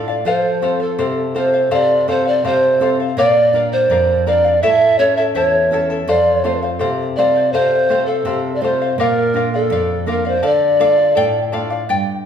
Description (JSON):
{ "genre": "andean folk, Andean ensemble", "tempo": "82 BPM", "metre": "2/4", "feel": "straight", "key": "unclear", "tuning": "A4 = 440 Hz", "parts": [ { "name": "charango", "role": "accompaniment", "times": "0.0-12.2 s", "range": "E4 to A5", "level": "-21 LUFS", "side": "left 3 dB", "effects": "none" }, { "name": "nylon-string guitar", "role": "accompaniment", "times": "0.0-12.3 s", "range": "E2 to Bb4", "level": "-22 LUFS", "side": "right 2 dB", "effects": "none" }, { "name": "mellow hollow polished pan flute", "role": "melody", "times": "0.3-11.5 s", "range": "A4 to E5", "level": "-15 LUFS", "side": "equal", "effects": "none" } ], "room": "wet large studio reverb, RT60 1.3 s", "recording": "band playing live in one room", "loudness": "-13 LUFS", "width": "side -8 dB against mid", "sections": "0.3-11.9 A section", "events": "none", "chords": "0.3 F; 3.2 Bb; 4.6 A; 6.1 F; 9.0 Bb; 10.4 Dm" }